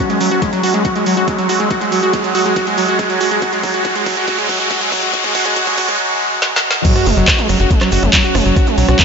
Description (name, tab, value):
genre	psychedelic trance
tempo	140 BPM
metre	4/4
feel	straight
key	unclear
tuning	A4 = 443 Hz
part	overtone-sweeping drone	sustained chords	0.0-9.0 s	F#3 to C#4	-19 LUFS	right 2 dB	chorus, built-in reverb, sidechain pumping
part	overdriven acid bass	riff	0.0-9.0 s	F#3 to F#4	-17 LUFS	equal	auto-pan, vintage 12-bit sampler grit, sidechain pumping, tape echo
part	riser and sub drop	sound effects	0.0-8.6 s	none	-21 LUFS	left 1 dB	none
part	garage drum kit	drums	0.1-9.0 s	crash cymbal, handclaps, hi-hat, rim click, snare drum	-19 LUFS	equal	overdrive, small room reverb
part	electronic kick drum	drums	0.4-9.0 s	none	-17 LUFS	equal	overdrive, small room reverb
part	tube shaker	percussion	6.9-9.0 s	none	-34 LUFS	left 4 dB	none
part	tight sequencer bass	bass	7.1-8.9 s	F#1 to B1	-15 LUFS	equal	none
room	wet huge ambient reverb, RT60 7.7 s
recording	dreamy mix soaked in reverb, high-pass filter, nothing above 7.7 kHz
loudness	-12 LUFS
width	side -6 dB against mid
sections	0.0-6.8 A section; 6.8-9.0 B section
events	build-up 0.0-6.8; drum fill 0.0-6.0, 6.4-6.8; riser 0.0-6.0; filter sweep on acid bass 0.0-6.8; filter sweep 0.0-6.8; drop 6.8-9.0; impact 6.8-8.6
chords	0.0 F#5